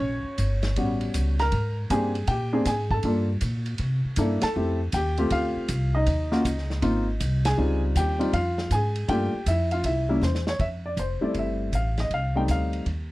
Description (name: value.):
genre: jazz piano trio.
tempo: 159 BPM.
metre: 4/4.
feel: swing 66% on 8ths.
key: unclear.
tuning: A4 = 440 Hz.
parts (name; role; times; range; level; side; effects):
warm baby grand piano; melody; 0.0-12.9 s; G3 to Bb5; -26 LUFS; equal; none.
upright bass; bass; 0.0-13.1 s; F1 to C3; -26 LUFS; equal; none.
vintage drum kit; drums; 0.4-13.0 s; hi-hat, kick drum, ride cymbal, snare drum; -34 LUFS; equal; none.
room: little or no reverb.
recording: none.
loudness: -23 LUFS.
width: side -18 dB against mid.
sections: 0.0-10.6 A section; 10.6-13.1 B section.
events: band accent 4.4, 7.4; drum fill 10.2-10.6.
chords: 0.0 Bbm; 0.8 A13; 1.5 Abmaj9#11; 3.0 Gm9; 3.8 C13; 4.6 Fadd9; 6.1 Eb7(no3); 6.8 Ab; 7.6 Dbmaj9#11; 9.1 Gm9; 9.8 C(b9); 10.6 Fmaj7; 12.1 F7.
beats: | 0.01 0.39 0.77 1.15 | 1.53 1.91 2.29 2.67 | 3.04 3.42 3.80 4.18 | 4.56 4.93 5.31 5.69 | 6.07 6.45 6.82 7.20 | 7.58 7.96 8.33 8.71 | 9.09 9.46 9.84 10.22 | 10.60 10.97 11.35 11.73 | 12.11 12.49 12.87.